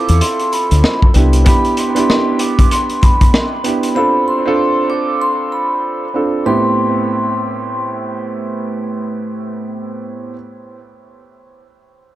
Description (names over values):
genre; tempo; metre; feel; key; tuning
hip hop, boom-bap hip-hop; 96 BPM; 4/4; swing 60% on 16ths; A minor; A4 = 440 Hz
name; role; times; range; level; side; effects
vibraphone with soft mallets; melody; 0.0-8.3 s; B5 to D6; -19 LUFS; left 1 dB; dub echo
dark baby grand piano; accompaniment; 0.0-10.3 s; A2 to A4; -18 LUFS; right 3 dB; cassette tape, dub echo
deep dub fingered electric bass; bass; 0.1-1.4 s; C2 to E2; -10 LUFS; equal; none
crunchy breakbeat drum kit; drums; 0.1-4.0 s; hi-hat, kick drum, rim click, snare drum; -13 LUFS; equal; none
room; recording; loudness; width
light reverb, small room ambience; echo-heavy mix; -13 LUFS; side -14 dB against mid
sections
0.0-6.5 A section; 6.5-9.0 B section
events
none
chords
0.0 Dm7 (rootless); 1.1 Cmaj7; 4.0 F6/C; 6.5 Am9